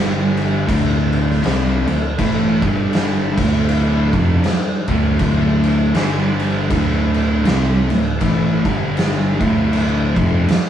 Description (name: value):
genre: stoner and doom metal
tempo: 80 BPM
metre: 4/4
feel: swing 58% on 8ths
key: D minor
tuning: A4 = 440 Hz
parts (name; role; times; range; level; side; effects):
- string machine, violas; sustained chords; 0.0-10.7 s; G3 to D5; -30 LUFS; left 1 dB; none
- fuzz guitar; riff; 0.0-10.5 s; D2 to C4; -18 LUFS; left 1 dB; distortion
- thick fuzz guitar; riff; 0.0-10.5 s; D2 to C4; -22 LUFS; right 4 dB; distortion
- overdriven picked electric bass; bass; 0.0-10.5 s; D1 to C2; -23 LUFS; equal; none
- oversized low-tuned drum kit; drums; 0.4-10.7 s; crash cymbal, kick drum, snare drum; -20 LUFS; equal; none
room: moderate studio reverb, RT60 0.6 s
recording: band playing live in one room, studio reverb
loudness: -14 LUFS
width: side -10 dB against mid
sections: 0.0-10.7 A section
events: none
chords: 0.0 G5; 0.7 D5; 2.6 G5; 3.3 Dm; 5.9 G5; 6.7 D5; 8.6 G5; 9.3 Dm